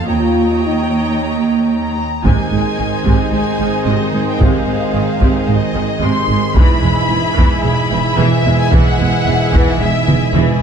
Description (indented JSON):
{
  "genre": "cinematic, epic orchestral film score",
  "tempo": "111 BPM",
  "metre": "4/4",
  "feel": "straight",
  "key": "unclear",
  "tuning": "A4 = 440 Hz",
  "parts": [
    { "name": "warm symphonic violin section", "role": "second line", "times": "0.0-10.6 s", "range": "Ab4 to Bb5", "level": "-22 LUFS", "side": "left 2 dB", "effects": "none" },
    { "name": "clear symphonic viola section", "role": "accompaniment", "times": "0.0-10.6 s", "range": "C3 to Eb5", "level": "-22 LUFS", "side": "right 1 dB", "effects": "none" },
    { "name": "rich symphonic cello section", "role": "bass", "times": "0.0-10.4 s", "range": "Eb2 to Ab2", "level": "-19 LUFS", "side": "right 4 dB", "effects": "none" },
    { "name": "dark French horn section", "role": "sustained chords", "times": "0.1-10.6 s", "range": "Ab3 to F4", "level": "-24 LUFS", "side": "left 3 dB", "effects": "none" },
    { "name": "clear symphonic double bass section", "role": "bass", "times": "0.1-10.4 s", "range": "E1 to Eb2", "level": "-19 LUFS", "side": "right 4 dB", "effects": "none" },
    { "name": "warm symphonic violin section", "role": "melody", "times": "1.7-10.3 s", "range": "Eb5 to C6", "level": "-21 LUFS", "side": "left 4 dB", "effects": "none" },
    { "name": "warm trombone section", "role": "sustained chords", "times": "2.3-10.6 s", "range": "Ab2 to E3", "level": "-22 LUFS", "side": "right 3 dB", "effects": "none" },
    { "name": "taiko ensemble", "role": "drums", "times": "2.3-10.6 s", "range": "none", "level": "-15 LUFS", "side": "equal", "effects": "none" }
  ],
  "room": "moderate scoring stage reverb, RT60 1.6 s",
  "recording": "dark, warm production",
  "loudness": "-12 LUFS",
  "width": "side -7 dB against mid",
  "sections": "0.0-2.2 A section; 2.2-10.6 B section",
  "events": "drum fill 10.1-10.6",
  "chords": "0.1 Eb7; 2.2 Ab; 6.6 E"
}